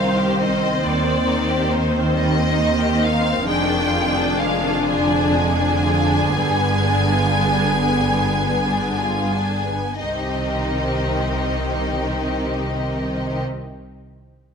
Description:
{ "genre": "classical, slow romantic movement for symphony orchestra", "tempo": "28-46 BPM (dotted quarters)", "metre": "12/8", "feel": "rubato", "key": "C minor", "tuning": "A4 = 440 Hz", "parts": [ { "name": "rich symphonic violin section", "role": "melody", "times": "0.0-13.4 s", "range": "C5 to Ab5", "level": "-24 LUFS", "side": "left 1 dB", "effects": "none" }, { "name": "clear symphonic violin section", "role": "second line", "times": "0.0-13.4 s", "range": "G3 to C5", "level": "-25 LUFS", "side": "left 2 dB", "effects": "none" }, { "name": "rich symphonic viola section", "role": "accompaniment", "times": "0.0-13.4 s", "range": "D3 to D4", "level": "-23 LUFS", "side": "equal", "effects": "none" }, { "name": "rich symphonic cello section", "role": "bass", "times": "0.0-13.4 s", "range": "C2 to C3", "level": "-25 LUFS", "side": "right 1 dB", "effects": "none" }, { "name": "rich symphonic double bass section", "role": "bass", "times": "0.0-13.4 s", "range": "F1 to Eb2", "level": "-25 LUFS", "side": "right 2 dB", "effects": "none" } ], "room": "light reverb", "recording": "close, detailed microphones", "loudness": "-17 LUFS", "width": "side -6 dB against mid", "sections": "0.0-10.0 A section; 10.0-14.5 B section", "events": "slowing down 0.0-10.0", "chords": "0.0 Cm; 0.8 Cm/Eb; 3.5 Ddim/F; 6.3 G(b9); 10.0 Cm", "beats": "0.84 2.16 | 3.48 4.86 6.35 8.03 | 10.01 11.72" }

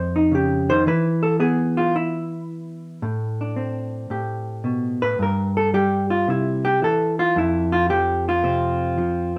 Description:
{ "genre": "solo jazz", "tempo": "111 BPM", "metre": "4/4", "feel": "swing 69% on 8ths", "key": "A minor from 3.0 s", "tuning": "A4 = 440 Hz", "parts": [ { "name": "hollow-body jazz guitar", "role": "solo", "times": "0.0-9.4 s", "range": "F2 to C5", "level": "-22 LUFS", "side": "equal", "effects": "none" } ], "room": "moderate studio reverb, RT60 0.8 s", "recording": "none", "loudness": "-21 LUFS", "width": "mono", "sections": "0.0-3.0 A section; 3.0-9.4 A section", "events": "hollow-body jazz guitar solo 0.0-9.4", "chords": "0.0 Fm7; 0.9 E5; 3.0 Am11; 5.2 N.C.; 6.3 C; 7.4 F5", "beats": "0.32 | 0.86 1.40 1.94 2.48 | 3.02 3.56 4.11 4.65 | 5.19 5.73 6.27 6.81 | 7.35 7.89 8.44 8.98" }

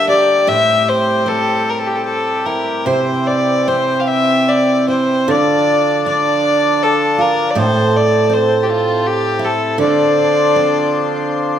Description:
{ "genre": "celtic folk, Celtic slow air", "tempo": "73-82 BPM", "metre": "3/4", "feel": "rubato", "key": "D minor", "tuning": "A4 = 440 Hz", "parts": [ { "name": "rich fiddle", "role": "melody", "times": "0.0-11.3 s", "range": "F4 to F5", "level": "-15 LUFS", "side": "left 1 dB", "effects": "none" }, { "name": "picked steel-string acoustic guitar", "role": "accompaniment", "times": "0.0-11.6 s", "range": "A2 to C5", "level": "-17 LUFS", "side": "right 3 dB", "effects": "none" }, { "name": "accordion", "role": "sustained chords", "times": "0.0-11.6 s", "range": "C3 to A5", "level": "-21 LUFS", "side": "left 4 dB", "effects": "none" } ], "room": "moderate recital hall reverb, RT60 1.6 s", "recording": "minimal, uncompressed stereo recording", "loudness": "-12 LUFS", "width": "side -9 dB against mid", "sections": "0.0-11.6 A section", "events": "none", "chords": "0.5 Am7; 2.9 C; 5.3 Dm; 7.6 Am; 9.8 Dm7", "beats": "| 0.48 1.27 2.06 | 2.88 3.68 4.48 | 5.28 6.06 6.81 | 7.56 8.31 9.05 | 9.79 10.56 11.36" }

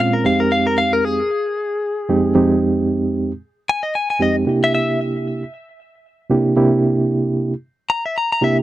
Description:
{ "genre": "blues", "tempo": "114 BPM", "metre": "4/4", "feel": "swing 55% on 16ths", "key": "F dorian", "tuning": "A4 = 439 Hz", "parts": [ { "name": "direct-recorded clean electric guitar", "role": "melody", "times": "0.0-8.6 s", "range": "Ab4 to Bb5", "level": "-19 LUFS", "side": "left 2 dB", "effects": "tape echo" }, { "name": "bright reed electric piano", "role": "accompaniment", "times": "0.0-8.6 s", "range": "F2 to G4", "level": "-16 LUFS", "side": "right 2 dB", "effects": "fast tremolo" } ], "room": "little or no reverb", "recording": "dry, close 1970s-style studio recording", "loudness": "-16 LUFS", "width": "side -14 dB against mid", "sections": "0.0-8.6 A section", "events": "clean electric guitar solo 0.0-8.6", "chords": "0.2 Fm7; 4.5 C7", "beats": "| 0.25 0.77 1.30 1.83 | 2.35 2.88 3.41 3.93 | 4.46 4.99 5.51 6.04 | 6.57 7.10 7.62 8.15" }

